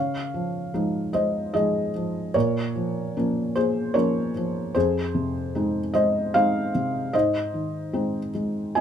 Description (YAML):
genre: neoclassical minimalist piano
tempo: 75 BPM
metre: 3/4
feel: rubato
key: F minor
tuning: A4 = 441 Hz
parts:
  - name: felt-muted upright piano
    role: solo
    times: 0.0-8.8 s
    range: F2 to Ab5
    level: -22 LUFS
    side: equal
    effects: none
room: light reverb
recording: minimal, uncompressed stereo recording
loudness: -22 LUFS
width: side -8 dB against mid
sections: 0.0-8.8 A section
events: none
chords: 0.0 Dbadd9; 2.3 Bbm; 4.7 Fm7; 7.1 Ab